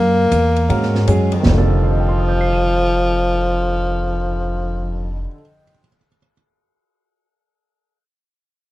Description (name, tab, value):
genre	jazz, small-group swing and bop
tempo	157 BPM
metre	4/4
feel	swing 64% on 8ths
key	F mixolydian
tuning	A4 = 440 Hz
part	warm tenor saxophone	melody	0.0-5.3 s	F3 to Bb3	-18 LUFS	left 1 dB	none
part	upright bass	bass	0.0-5.2 s	F1 to Ab2	-18 LUFS	equal	none
part	open jazz drum kit	drums	0.3-1.6 s	hi-hat, kick drum, ride cymbal, snare drum	-22 LUFS	right 1 dB	none
part	warm upright piano	accompaniment	0.7-6.3 s	F2 to Eb7	-24 LUFS	right 1 dB	none
room	little or no reverb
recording	close, detailed microphones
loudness	-15 LUFS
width	side -16 dB against mid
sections	0.0-1.5 A section; 1.5-4.5 B section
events	none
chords	0.0 Gb7; 1.5 F13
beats	0.31 0.69 1.07 | 1.45 1.84 2.22 2.60 | 2.98 3.37 3.75 4.13